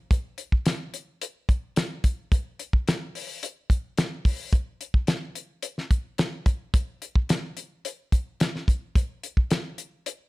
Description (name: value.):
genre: blues.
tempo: 108 BPM.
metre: 4/4.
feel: straight.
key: none.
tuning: none.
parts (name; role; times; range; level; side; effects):
damped 70s drum kit; drums; 0.1-10.2 s; hi-hat, kick drum, snare drum; -23 LUFS; equal; none.
room: light reverb.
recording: none.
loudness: -24 LUFS.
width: side -21 dB against mid.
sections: 0.0-10.3 A section.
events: none.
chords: none.